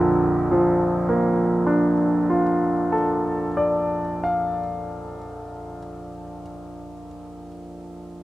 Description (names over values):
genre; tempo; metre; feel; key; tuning
classical, impressionist solo piano; 39 BPM; 5/4; rubato; Bb major; A4 = 441 Hz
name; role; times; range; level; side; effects
bright concert grand piano; solo; 0.0-8.2 s; Bb1 to Bb5; -21 LUFS; equal; none
room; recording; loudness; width
moderate recital hall reverb, RT60 1.4 s; close, detailed microphones; -19 LUFS; side -16 dB against mid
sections
0.0-6.0 A section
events
none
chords
0.0 Bbmaj7